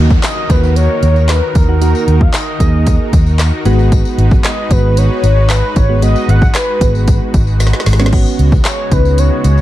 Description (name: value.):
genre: dance-pop.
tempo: 114 BPM.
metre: 4/4.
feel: straight.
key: unclear.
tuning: A4 = 441 Hz.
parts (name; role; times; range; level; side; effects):
soft electric-piano-like synth keys; accompaniment; 0.0-9.5 s; Ab3 to Ab4; -19 LUFS; right 2 dB; chorus, sidechain pumping.
soft supersaw; sustained chords; 0.0-9.6 s; Db3 to Cb5; -22 LUFS; equal; sidechain pumping.
vintage muted fingered electric bass; bass; 0.0-9.6 s; Ab1 to Eb2; -11 LUFS; equal; sidechain pumping.
downlifter; sound effects; 0.0-3.9 s; none; -28 LUFS; equal; none.
deep house drum kit; drums; 0.1-9.6 s; crash cymbal, handclaps, hi-hat, kick drum, snare drum; -14 LUFS; equal; none.
tambourine; percussion; 0.1-9.6 s; none; -33 LUFS; left 12 dB; none.
mellow horn-like synth lead; melody; 0.2-9.6 s; Bb4 to Gb5; -18 LUFS; left 1 dB; chorus, phaser, ping-pong delay.
room: little or no reverb.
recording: dark, warm production.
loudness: -9 LUFS.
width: side -14 dB against mid.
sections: 0.0-9.6 A section.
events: drum fill 7.6-8.1.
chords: 0.0 Ebm; 3.7 Abm7.